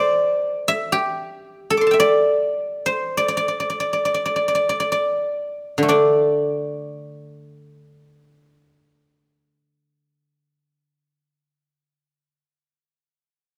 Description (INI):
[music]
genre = chinese traditional, Chinese solo plucked strings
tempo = 41-63 BPM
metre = 4/4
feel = rubato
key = D shang mode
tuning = A4 = 439 Hz
[part]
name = guzheng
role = solo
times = 0.0-12.4 s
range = D3 to D6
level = -20 LUFS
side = equal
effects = none
[sound]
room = moderate recital hall reverb, RT60 1.6 s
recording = close, detailed microphones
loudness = -20 LUFS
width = mono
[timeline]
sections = 0.0-5.9 A section; 5.9-11.4 B section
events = slowing down 0.0-5.9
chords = none